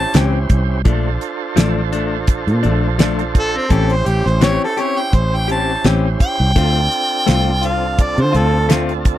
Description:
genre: straight-eighth soul blues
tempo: 84 BPM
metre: 4/4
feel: swing 54% on 16ths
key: D minor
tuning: A4 = 440 Hz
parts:
  - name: clear harmonica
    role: melody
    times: 0.0-8.7 s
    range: C4 to A5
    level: -18 LUFS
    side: equal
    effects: overdrive
  - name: tonewheel organ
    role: accompaniment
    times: 0.0-9.2 s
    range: C4 to B#4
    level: -23 LUFS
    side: right 6 dB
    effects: slow rotary speaker, overdrive
  - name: direct-recorded clean electric guitar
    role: stabs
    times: 0.0-8.9 s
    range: E3 to G4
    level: -20 LUFS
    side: left 9 dB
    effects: none
  - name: fingered electric bass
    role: bass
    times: 0.0-9.2 s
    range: A1 to D3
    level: -17 LUFS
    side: equal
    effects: none
  - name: damped 70s drum kit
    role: drums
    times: 0.1-9.2 s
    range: hi-hat, kick drum, snare drum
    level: -14 LUFS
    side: right 1 dB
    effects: none
room: little or no reverb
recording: dry, close 1970s-style studio recording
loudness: -14 LUFS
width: side -13 dB against mid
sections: 0.0-9.2 A section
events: none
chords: 0.0 A7#9 (rootless); 0.9 Bbmaj7; 3.7 A7#9; 6.6 Dm7

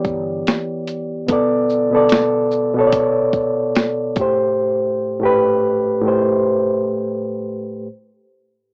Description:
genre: lo-fi hip hop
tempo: 73 BPM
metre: 4/4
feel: swing 62% on 16ths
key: A minor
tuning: A4 = 440 Hz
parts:
  - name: bright reed electric piano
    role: accompaniment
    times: 0.0-7.9 s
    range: A2 to D5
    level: -18 LUFS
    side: equal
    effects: cassette tape, low-pass filter
  - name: boom bap sampler-style drum kit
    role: drums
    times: 0.0-4.4 s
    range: hi-hat, kick drum, shaker, snare drum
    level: -22 LUFS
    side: equal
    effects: vintage 12-bit sampler grit, cassette tape
room: wet booth ambience, RT60 0.2 s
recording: home recording on cassette, small speaker sound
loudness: -18 LUFS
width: mono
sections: 0.0-7.9 A section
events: none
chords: 0.0 Em7; 1.3 Bm7; 4.2 Am7

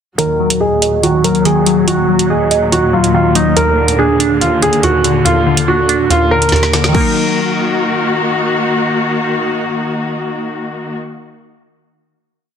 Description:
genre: hip hop, drill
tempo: 142 BPM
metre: 4/4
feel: half-time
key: Eb harmonic minor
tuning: A4 = 438 Hz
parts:
  - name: bright concert grand piano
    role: melody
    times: 0.2-8.2 s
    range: Eb4 to Bb4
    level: -14 LUFS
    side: right 1 dB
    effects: low-pass filter, digital delay
  - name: glassy wavetable pluck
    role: accompaniment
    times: 0.2-11.0 s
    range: Eb2 to Eb5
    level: -15 LUFS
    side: equal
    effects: chorus, low-pass filter
  - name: rich studio string section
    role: sustained chords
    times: 0.2-11.0 s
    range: Eb2 to Gb4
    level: -17 LUFS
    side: left 1 dB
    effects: low-pass filter
  - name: drill drum kit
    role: drums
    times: 0.2-7.0 s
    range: crash cymbal, hi-hat, kick drum, snare drum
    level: -17 LUFS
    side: right 1 dB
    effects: vintage 12-bit sampler grit
room: light reverb, digital ambience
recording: dense, heavily limited modern master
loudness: -11 LUFS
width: side -8 dB against mid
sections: 0.2-6.9 breakdown; 6.9-10.3 final chord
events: filter sweep 0.2-6.9; drum fill 6.5-6.9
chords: 0.2 Ebm; 3.6 Bb/Eb; 6.9 Ebm

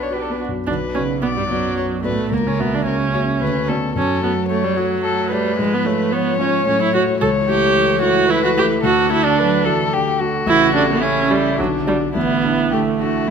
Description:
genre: quick classical-period movement for piano quartet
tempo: 110 BPM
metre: 3/4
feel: straight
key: B minor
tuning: A4 = 440 Hz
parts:
  - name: muted violin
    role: melody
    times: 0.0-13.3 s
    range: D4 to D5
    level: -22 LUFS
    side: left 7 dB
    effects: none
  - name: dark grand piano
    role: accompaniment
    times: 0.0-13.3 s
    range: A1 to E5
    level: -22 LUFS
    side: left 2 dB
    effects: none
  - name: muted viola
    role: accompaniment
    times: 0.0-13.3 s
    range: F#3 to A4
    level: -19 LUFS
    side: right 5 dB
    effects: none
  - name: muted cello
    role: second line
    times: 0.1-13.3 s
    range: F#2 to G4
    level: -25 LUFS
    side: right 9 dB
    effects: none
room: moderate scoring stage reverb, RT60 1.9 s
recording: close, detailed microphones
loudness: -15 LUFS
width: side -6 dB against mid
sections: 0.7-13.3 A section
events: none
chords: 0.0 Bm; 2.3 F#7/C#; 3.4 Bm/D; 4.0 F#m; 5.6 C#7/G#; 6.7 F#m/A; 7.2 A7/C#; 8.8 D; 10.5 A7; 11.6 Bm; 12.2 Asus4

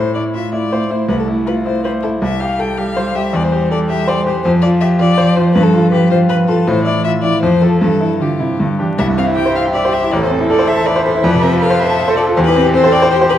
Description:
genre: quick classical-period movement for piano trio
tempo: 160 BPM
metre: 3/4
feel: straight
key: C major from 4.5 s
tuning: A4 = 440 Hz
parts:
  - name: rich violin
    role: melody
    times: 0.0-13.4 s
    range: G4 to G5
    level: -19 LUFS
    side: left 6 dB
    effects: none
  - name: dark cello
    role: second line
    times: 0.0-13.4 s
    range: C3 to B4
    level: -17 LUFS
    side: right 3 dB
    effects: none
  - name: bright grand piano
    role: accompaniment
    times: 0.0-13.4 s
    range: A1 to A5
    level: -14 LUFS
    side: equal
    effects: none
room: wet recital hall reverb, RT60 1.5 s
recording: dark, warm production, vinyl crackle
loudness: -12 LUFS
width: side -11 dB against mid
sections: 0.0-9.0 A section; 9.0-13.4 B section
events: none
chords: 0.0 Am; 1.1 Am/C; 2.2 C5; 3.3 C/E; 4.5 Dm7/F; 5.6 G7; 6.7 A5; 7.4 F; 7.8 C/G; 8.6 G5; 9.0 C; 10.1 Am; 11.2 F; 12.4 C/E

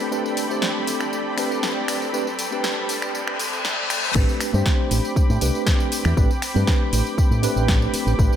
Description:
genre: nu-disco, nu disco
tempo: 119 BPM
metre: 4/4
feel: straight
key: A minor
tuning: A4 = 440 Hz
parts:
  - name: mellow tine electric piano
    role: accompaniment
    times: 0.0-8.4 s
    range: A3 to C5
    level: -26 LUFS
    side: right 1 dB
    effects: medium stereo tremolo, digital delay
  - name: lush unison pad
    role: sustained chords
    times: 0.0-8.4 s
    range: C4 to D6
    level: -28 LUFS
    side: equal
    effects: chorus, sidechain pumping
  - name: house drum kit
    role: drums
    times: 0.0-8.4 s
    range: crash cymbal, finger snaps, hi-hat, snare drum, tambourine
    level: -27 LUFS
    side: equal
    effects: small room ambience
  - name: riser and reverse cymbal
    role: sound effects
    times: 1.2-4.2 s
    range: none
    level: -30 LUFS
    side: left 3 dB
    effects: none
  - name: fingered electric bass with an envelope filter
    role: bass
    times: 4.2-8.3 s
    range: A1 to A2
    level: -21 LUFS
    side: equal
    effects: sidechain pumping
  - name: electronic kick drum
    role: drums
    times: 4.2-8.3 s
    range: none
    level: -19 LUFS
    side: equal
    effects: small room ambience
room: light reverb, digital ambience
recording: high-pass filter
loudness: -19 LUFS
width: side -10 dB against mid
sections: 0.0-4.2 A section; 4.2-8.4 B section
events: build-up 0.0-4.2; filter sweep 0.0-4.2; riser 1.2-4.2; reverse cymbal 3.1-4.2; drop 4.2-8.4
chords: 0.0 Am11

